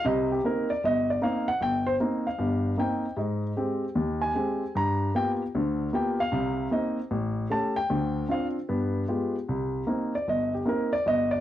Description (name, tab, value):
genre	jazz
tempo	152 BPM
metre	4/4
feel	swing 64% on 8ths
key	C minor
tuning	A4 = 441 Hz
part	warm grand piano	solo	0.0-11.4 s	G1 to A#5	-25 LUFS	equal	none
room	moderate studio reverb, RT60 0.7 s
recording	worn, warbling old tape, cassette tape, warbly pitch drift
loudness	-25 LUFS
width	side -12 dB against mid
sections	0.0-9.5 A section; 9.5-11.4 B section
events	grand piano solo 9.5-11.4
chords	0.0 Cm7; 3.2 Abmaj7; 4.8 G7#9; 6.3 Cm7; 7.1 A7; 7.9 Dmadd11; 8.7 G7b9; 9.5 Cm7